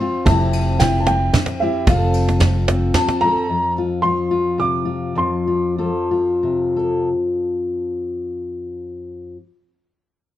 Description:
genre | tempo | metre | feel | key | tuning
acoustic folk duo or small band | 110 BPM | 3/4 | uneven beats | F major | A4 = 444 Hz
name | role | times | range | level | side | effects
dark upright piano | melody | 0.0-6.7 s | E5 to D6 | -22 LUFS | right 1 dB | none
fingerpicked steel-string acoustic guitar | accompaniment | 0.0-9.4 s | F2 to A4 | -20 LUFS | left 3 dB | none
cajon | percussion | 0.0-3.4 s | none | -19 LUFS | right 2 dB | none
fingered electric bass | bass | 0.3-2.9 s | F1 | -18 LUFS | equal | none
soft brush drum kit | drums | 0.3-3.1 s | kick drum, ride cymbal, snare drum | -24 LUFS | equal | none
room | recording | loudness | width
little or no reverb | dark, warm production | -16 LUFS | side -13 dB against mid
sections
0.0-3.5 A section; 3.5-7.1 B section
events
slowing down 3.5-7.1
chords
0.3 C/F; 1.9 F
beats
| 0.26 0.80 1.34 | 1.87 2.41 2.95 | 3.48 4.03 4.58 | 5.16 5.77 6.42

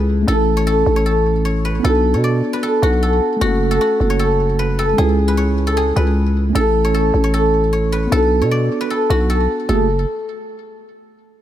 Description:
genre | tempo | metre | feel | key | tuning
hip hop, trap | 153 BPM | 4/4 | half-time | F# minor | A4 = 438 Hz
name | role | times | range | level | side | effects
guzheng | melody | 0.0-9.9 s | F#4 to D5 | -18 LUFS | equal | ping-pong delay
mellow tine electric piano | accompaniment | 0.0-9.9 s | G#3 to A4 | -21 LUFS | right 2 dB | slow stereo tremolo
growling 808-style bass | bass | 0.0-10.1 s | F#1 to B2 | -17 LUFS | equal | none
room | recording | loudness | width
light reverb, small room ambience | none | -14 LUFS | side -12 dB against mid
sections
0.0-9.7 A section; 9.7-11.3 B section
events
none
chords
0.3 A; 1.8 Bm7; 3.4 F#m; 5.0 C#m; 6.6 A; 8.1 Bm7; 9.7 F#madd9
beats
| 0.28 0.67 1.06 1.45 | 1.84 2.24 2.63 3.02 | 3.41 3.81 4.20 4.59 | 4.98 5.38 5.77 6.16 | 6.55 6.94 7.34 7.73 | 8.12 8.51 8.90 9.30 | 9.69

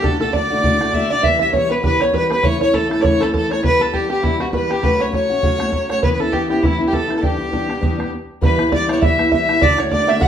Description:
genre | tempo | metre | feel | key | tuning
celtic folk, Celtic reel | 200 BPM | 4/4 | swing 57% on 8ths | E dorian | A4 = 440 Hz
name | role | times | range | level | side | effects
clear fiddle | melody | 0.0-10.3 s | E4 to F#5 | -19 LUFS | equal | none
open-back banjo | second line | 0.0-10.3 s | E4 to F#5 | -23 LUFS | right 5 dB | none
warm fiddle | second line | 0.0-10.3 s | E4 to F#5 | -26 LUFS | left 3 dB | none
fingerpicked steel-string acoustic guitar | accompaniment | 0.0-10.3 s | D2 to G4 | -20 LUFS | left 2 dB | none
bodhran | percussion | 0.0-10.3 s | none | -21 LUFS | right 2 dB | none
room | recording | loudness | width
wet large studio reverb, RT60 0.8 s | band playing live in one room | -15 LUFS | side -9 dB against mid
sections
0.0-8.4 A section; 8.4-10.3 B section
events
stop 8.1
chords
0.0 D; 1.2 Em; 2.4 A; 3.6 Em; 4.8 F#m; 6.0 Aadd9; 7.2 Em7; 8.4 Em; 9.6 D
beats
| 0.04 0.34 0.63 0.93 | 1.23 1.53 1.83 2.13 | 2.43 2.73 3.03 3.33 | 3.63 3.93 4.23 4.53 | 4.83 5.13 5.43 5.73 | 6.03 6.33 6.63 6.92 | 7.22 7.52 7.82 8.12 | 8.42 8.72 9.02 9.31 | 9.61 9.91 10.21

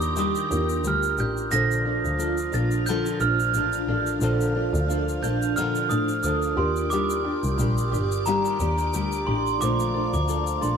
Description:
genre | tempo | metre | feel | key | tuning
indie pop, bedroom pop | 89 BPM | 4/4 | swing 55% on 16ths | Bb major | A4 = 441 Hz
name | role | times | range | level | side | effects
glockenspiel with rubber mallets | melody | 0.0-10.8 s | Bb5 to Bb6 | -27 LUFS | right 4 dB | lush chorus, tape echo
mellow tine electric piano | accompaniment | 0.0-10.8 s | A3 to C5 | -32 LUFS | right 5 dB | medium stereo tremolo, cassette tape
nylon-string guitar | accompaniment | 0.0-10.8 s | Bb2 to A4 | -29 LUFS | left 6 dB | lush chorus, warbly pitch drift
ensemble organ-string | sustained chords | 0.0-10.8 s | D4 to D6 | -32 LUFS | right 1 dB | phaser, ensemble chorus
warm double bass | bass | 0.0-10.8 s | G1 to Bb2 | -26 LUFS | equal | none
tube shaker | percussion | 0.0-10.8 s | none | -38 LUFS | left 8 dB | none
room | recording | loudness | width
light reverb, small room ambience | none | -22 LUFS | side -7 dB against mid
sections
0.0-10.8 A section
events
none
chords
0.0 Ebmaj7; 1.5 Bbmaj7; 6.6 Ebmaj7; 9.6 Bbmaj7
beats
0.17 0.85 | 1.52 2.20 2.87 3.54 | 4.22 4.89 5.56 6.24 | 6.91 7.59 8.26 8.93 | 9.61 10.28

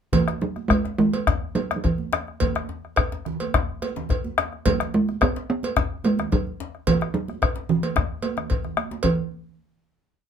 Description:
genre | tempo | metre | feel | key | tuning
west african traditional, West African drum ensemble | 108 BPM | 4/4 | straight | E major pentatonic | A4 = 444 Hz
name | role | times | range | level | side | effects
talking drum | melody | 0.1-9.3 s | E3 to B3 | -22 LUFS | right 3 dB | none
bombo | percussion | 0.1-9.3 s | none | -24 LUFS | left 3 dB | none
congas | percussion | 0.1-9.3 s | none | -32 LUFS | right 5 dB | none
cowbell | percussion | 0.1-9.3 s | none | -29 LUFS | right 3 dB | none
djembe | percussion | 0.1-9.3 s | none | -32 LUFS | left 6 dB | none
room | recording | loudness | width
moderate small room reverb, RT60 0.5 s | minimal, uncompressed stereo recording | -22 LUFS | side -8 dB against mid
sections
0.1-9.0 A section; 9.0-10.3 final note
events
speeding up 0.1-10.3; drum fill 8.4-9.0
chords
none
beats
| 0.13 0.70 1.27 1.84 | 2.41 2.98 3.54 4.10 | 4.66 5.22 5.77 6.32 | 6.87 7.42 7.96 8.50 | 9.03

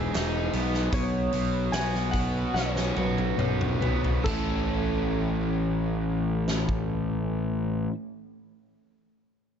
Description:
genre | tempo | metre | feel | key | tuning
rock, shoegaze and dream pop | 68-78 BPM | 4/4 | straight | A lydian | A4 = 440 Hz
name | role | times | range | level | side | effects
Celtic harp | melody | 0.0-7.8 s | A4 to G#5 | -35 LUFS | equal | slapback echo
fingerpicked twelve-string acoustic guitar | arpeggios | 0.0-5.2 s | D#4 to C#5 | -36 LUFS | equal | lush chorus, slapback echo
overdriven electric guitar | riff | 0.0-7.9 s | A2 to G#4 | -32 LUFS | left 8 dB | analog chorus
raw garage guitar | riff | 0.0-7.9 s | A2 to G#4 | -33 LUFS | right 11 dB | overdrive, reverse reverb
fuzz picked electric bass | bass | 0.0-7.9 s | E1 to B1 | -29 LUFS | equal | overdrive
huge arena drum kit | drums | 0.1-6.9 s | crash cymbal, hi-hat, kick drum, snare drum, toms | -31 LUFS | equal | none
room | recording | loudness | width
light reverb, studio reverb | nothing above 7.7 kHz | -24 LUFS | side -8 dB against mid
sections
0.0-4.3 A section; 4.3-7.8 B section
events
slowing down 0.0-4.3; drum fill 2.5-4.3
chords
0.0 Emaj7; 0.9 Bsus2; 4.3 A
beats
0.15 | 0.93 1.73 2.55 3.39 | 4.26 5.14 6.03 6.91

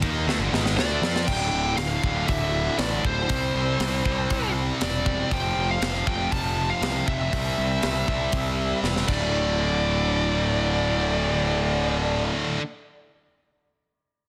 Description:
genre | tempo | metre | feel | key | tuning
heavy metal | 119 BPM | 4/4 | straight | D minor | A4 = 441 Hz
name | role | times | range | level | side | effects
heavy high-gain guitar | riff | 0.0-12.6 s | D2 to F4 | -29 LUFS | equal | distortion
fuzz picked electric bass | bass | 0.0-12.3 s | D1 to F2 | -30 LUFS | equal | overdrive
tight metal drum kit | drums | 0.0-9.2 s | crash cymbal, hi-hat, kick drum, ride cymbal, snare drum | -32 LUFS | equal | none
high-gain lead guitar | melody | 0.8-12.3 s | C5 to A5 | -30 LUFS | equal | distortion
room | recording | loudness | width
light reverb, studio ambience | dense, heavily limited modern master | -24 LUFS | mono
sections
0.0-1.3 A section; 1.3-9.3 B section; 9.3-13.4 C section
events
drum fill 0.3-1.3, 8.8-9.3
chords
0.0 G5; 1.3 Dm; 3.3 C; 5.3 F5; 7.3 C; 9.1 D5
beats
0.27 0.78 | 1.28 1.78 2.29 2.79 | 3.29 3.80 4.30 4.80 | 5.31 5.81 6.32 6.82 | 7.32 7.83 8.33 8.83 | 9.34 9.84 10.34 10.85 | 11.35 11.85 12.35

